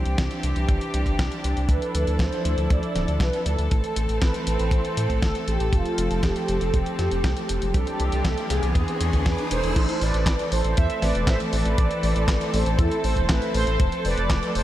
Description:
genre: italo disco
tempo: 119 BPM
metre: 4/4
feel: straight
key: A minor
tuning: A4 = 440 Hz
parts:
  - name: warm chamber string section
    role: sustained chords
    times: 0.0-14.6 s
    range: E3 to A4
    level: -28 LUFS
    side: equal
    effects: none
  - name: round analog bass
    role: bass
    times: 0.0-14.6 s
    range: D1 to A2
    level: -25 LUFS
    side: equal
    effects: none
  - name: clean 12-bit digital drum machine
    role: drums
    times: 0.1-14.6 s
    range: crash cymbal, handclaps, hi-hat, snare drum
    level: -31 LUFS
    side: equal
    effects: none
  - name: kick drum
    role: drums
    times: 0.2-14.4 s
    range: none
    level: -23 LUFS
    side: equal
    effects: none
  - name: mellow synth brass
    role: melody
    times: 1.7-14.6 s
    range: E4 to E5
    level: -28 LUFS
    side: right 1 dB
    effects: chorus, vintage 12-bit sampler grit, analog delay
  - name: riser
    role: sound effects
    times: 7.4-9.8 s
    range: none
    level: -33 LUFS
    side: equal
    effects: none
room: moderate lush hall reverb, RT60 2.1 s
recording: dreamy mix soaked in reverb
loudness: -21 LUFS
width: side -13 dB against mid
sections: 0.0-9.8 A section; 9.8-14.6 B section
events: riser 7.4-9.8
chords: 0.0 Cadd9; 1.7 Dmadd9; 3.7 Am; 5.7 F; 7.7 Cadd9; 8.8 E7; 9.8 Am; 13.8 F

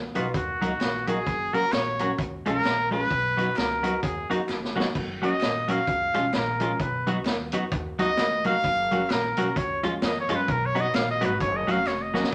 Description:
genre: ska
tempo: 130 BPM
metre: 4/4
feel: swing 59% on 8ths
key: F# major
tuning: A4 = 440 Hz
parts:
  - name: upright bass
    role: bass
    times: 0.0-12.3 s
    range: E#1 to F#2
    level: -38 LUFS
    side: equal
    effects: none
  - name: honky-tonk upright piano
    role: stabs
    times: 0.1-12.2 s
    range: E#3 to B4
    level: -35 LUFS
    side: equal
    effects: tube saturation
  - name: street-band drum kit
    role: drums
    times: 0.1-12.3 s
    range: crash cymbal, hi-hat, kick drum, snare drum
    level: -32 LUFS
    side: equal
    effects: none
  - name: clear trumpet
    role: melody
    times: 0.2-12.3 s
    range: E#4 to E#5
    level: -28 LUFS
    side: equal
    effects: none
  - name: clean electric guitar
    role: accompaniment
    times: 0.2-12.2 s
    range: E#3 to F#4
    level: -32 LUFS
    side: equal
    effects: none
  - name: group handclap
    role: percussion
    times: 0.8-12.0 s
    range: none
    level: -45 LUFS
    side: equal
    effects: none
room: wet studio reverb, RT60 0.8 s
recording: none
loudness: -26 LUFS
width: mono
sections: 0.0-12.3 A section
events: trumpet solo 0.0-12.3; drum fill 4.5-5.0, 11.9-12.3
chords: 0.3 D#m; 1.3 F#; 2.2 C#; 3.1 B; 4.0 D#m; 5.0 F#; 5.9 C#; 6.8 B; 7.7 D#m; 8.6 F#; 9.6 C#; 10.5 B; 11.4 F#

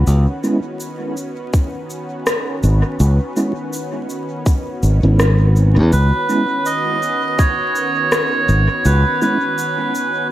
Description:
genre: ambient dub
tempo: 82 BPM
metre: 4/4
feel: swing 56% on 16ths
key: unclear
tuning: A4 = 439 Hz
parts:
  - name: warm analog pad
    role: sustained chords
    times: 0.0-10.3 s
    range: D#3 to B4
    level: -25 LUFS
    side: equal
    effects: chorus
  - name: modern bright fingered electric bass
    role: bass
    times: 0.0-9.0 s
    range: G#1 to E2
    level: -12 LUFS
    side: equal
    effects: none
  - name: electronic cabasa and rim click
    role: drums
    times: 0.1-10.1 s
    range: none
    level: -24 LUFS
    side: left 1 dB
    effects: dub echo
  - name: mellow tonewheel organ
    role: stabs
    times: 0.4-9.4 s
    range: G#3 to E4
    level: -22 LUFS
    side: right 1 dB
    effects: chorus vibrato, fast rotary speaker, dub echo
  - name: electronic kick drum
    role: drums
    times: 1.5-7.6 s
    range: none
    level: -15 LUFS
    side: equal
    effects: none
  - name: melodica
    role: melody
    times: 5.9-10.3 s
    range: B4 to D#5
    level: -17 LUFS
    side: right 2 dB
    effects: dub echo
room: light reverb, digital ambience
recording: vinyl crackle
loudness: -14 LUFS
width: side -13 dB against mid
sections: 0.0-10.3 A section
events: none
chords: 0.0 C#7(no3)

